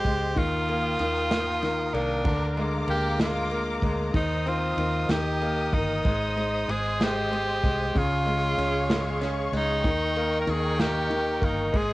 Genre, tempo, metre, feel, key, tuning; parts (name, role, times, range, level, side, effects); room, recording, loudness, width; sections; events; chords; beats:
six-eight pop ballad; 63 BPM (dotted quarters); 6/8; straight; A4 = 441 Hz
edgy tenor saxophone; melody; 0.0-11.9 s; D4 to Bb4; -28 LUFS; right 1 dB; cassette tape
bright grand piano; accompaniment; 0.0-11.9 s; Db3 to Db4; -29 LUFS; left 1 dB; cassette tape
rich studio string section; sustained chords; 0.0-11.9 s; Ab3 to Eb6; -34 LUFS; equal; cassette tape
vintage muted fingered electric bass; bass; 0.0-11.9 s; G1 to Eb2; -31 LUFS; equal
unplugged drum kit; drums; 0.0-11.9 s; kick drum, ride cymbal, snare drum; -31 LUFS; equal; cassette tape
light reverb; home recording on cassette; -23 LUFS; side -19 dB against mid
0.0-11.9 A section
0.4 Ebadd9; 2.3 Bb7/D; 4.1 Bbsus24/Eb; 5.1 Eb; 6.0 Ab; 8.0 Db; 9.8 Eb7
| 0.37 1.31 | 2.25 3.19 | 4.14 5.09 | 6.05 7.00 | 7.95 8.90 | 9.84 10.79 | 11.74